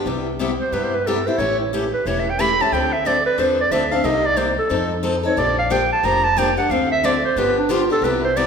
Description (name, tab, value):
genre	acoustic string swing (jazz manouche)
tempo	181 BPM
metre	4/4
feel	swing 61% on 8ths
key	C major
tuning	A4 = 440 Hz
part	picked steel-string acoustic guitar	accompaniment	0.0-8.5 s	C3 to A4	-21 LUFS	left 2 dB	none
part	upright bass	bass	0.1-8.5 s	E1 to G2	-29 LUFS	left 1 dB	none
part	warm clarinet	melody	0.6-8.5 s	D4 to B5	-19 LUFS	right 2 dB	none
room	wet recital hall reverb, RT60 1.4 s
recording	recorded in a church or concert hall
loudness	-17 LUFS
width	side -6 dB against mid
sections	0.1-8.5 A section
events	clarinet solo 0.1-8.5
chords	0.1 Cmaj7; 1.4 A7; 2.7 Dm9; 4.0 Cm7; 4.7 F7; 5.4 Bb6; 6.7 Dm7; 7.4 G7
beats	| 0.06 0.39 0.72 1.05 | 1.39 1.72 2.05 2.38 | 2.71 3.05 3.38 3.71 | 4.04 4.37 4.71 5.04 | 5.37 5.70 6.03 6.36 | 6.70 7.03 7.36 7.69 | 8.02 8.36